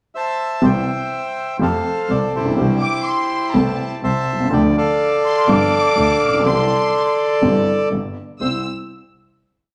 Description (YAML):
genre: tango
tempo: 124 BPM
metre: 4/4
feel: rubato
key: C major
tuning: A4 = 440 Hz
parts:
  - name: bandoneon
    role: melody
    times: 0.1-8.6 s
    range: E4 to A5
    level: -21 LUFS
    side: equal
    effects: none
  - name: dark upright piano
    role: accompaniment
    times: 0.6-8.6 s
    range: G1 to A4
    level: -23 LUFS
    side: equal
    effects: none
  - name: clear double bass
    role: bass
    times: 0.6-8.6 s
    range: G1 to F2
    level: -25 LUFS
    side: equal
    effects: none
  - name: warm symphonic violin section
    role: second line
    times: 2.8-8.6 s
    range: A5 to E6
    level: -24 LUFS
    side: equal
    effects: none
room: wet large studio reverb, RT60 1.1 s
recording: none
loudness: -18 LUFS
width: mono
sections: 0.0-0.6 pickup bar; 0.6-8.4 A section; 8.4-9.7 final chord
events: none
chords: 0.0 C; 1.6 Fadd9; 2.6 Cadd9; 3.5 Am/C; 4.5 Dm; 5.5 G7; 6.5 C; 7.9 N.C.; 8.4 C